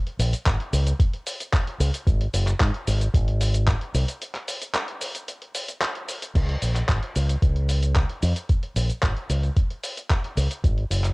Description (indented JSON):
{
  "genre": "nu-disco, nu disco",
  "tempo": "112 BPM",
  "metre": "4/4",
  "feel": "straight",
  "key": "Db major",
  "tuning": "A4 = 440 Hz",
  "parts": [
    { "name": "dusty soul sampler-style drum kit", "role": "drums", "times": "0.1-11.1 s", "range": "crash cymbal, handclaps, hi-hat, shaker", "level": "-29 LUFS", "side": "equal", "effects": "cassette tape" },
    { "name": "fingered electric bass with an envelope filter", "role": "bass", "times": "0.2-11.1 s", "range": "Gb1 to Ab2", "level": "-22 LUFS", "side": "equal", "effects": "none" },
    { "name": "electronic kick drum", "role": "drums", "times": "0.5-10.7 s", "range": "none", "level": "-21 LUFS", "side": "equal", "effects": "cassette tape" }
  ],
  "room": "digital ambience",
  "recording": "home recording on cassette",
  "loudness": "-22 LUFS",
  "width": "side -29 dB against mid",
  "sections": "0.0-6.4 A section; 6.4-11.1 B section",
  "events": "drop 0.0-6.4; break 4.2-6.4",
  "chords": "none",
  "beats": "0.46 1.00 1.53 | 2.07 2.60 3.14 3.67 | 4.21 4.75 5.28 5.82 | 6.35 6.89 7.42 7.96 | 8.50 9.03 9.57 10.10 | 10.64"
}